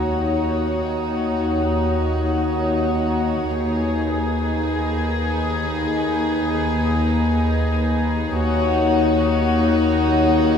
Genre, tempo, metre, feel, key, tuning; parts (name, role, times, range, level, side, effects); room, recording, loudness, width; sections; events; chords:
cinematic, suspense film score; free time; Eb minor; A4 = 443 Hz
warm symphonic violin section; melody; 0.0-10.6 s; Cb5 to Db5; -28 LUFS; left 6 dB
warm chamber violin section; second line; 0.0-10.6 s; Gb4 to Ab4; -27 LUFS; left 5 dB
warm studio viola section; accompaniment; 0.0-10.6 s; Eb4; -24 LUFS; left 1 dB
glass harmonica; sustained chords; 0.0-10.6 s; Eb4 to Bb5; -27 LUFS; right 1 dB
rich symphonic double bass section; bass; 0.0-10.6 s; Eb2; -24 LUFS; right 1 dB
warm symphonic cello section; bass; 0.0-10.6 s; Eb2; -26 LUFS; equal
organ-like drone; drone; 0.0-10.6 s; Eb2; -28 LUFS; left 2 dB; ensemble chorus, built-in reverb
wet scoring stage reverb, RT60 1.8 s; heard from further back in the room; -18 LUFS; side -7 dB against mid
0.0-10.6 A section
0.0 Ebm7; 3.5 Abm/Eb; 8.4 Ebm7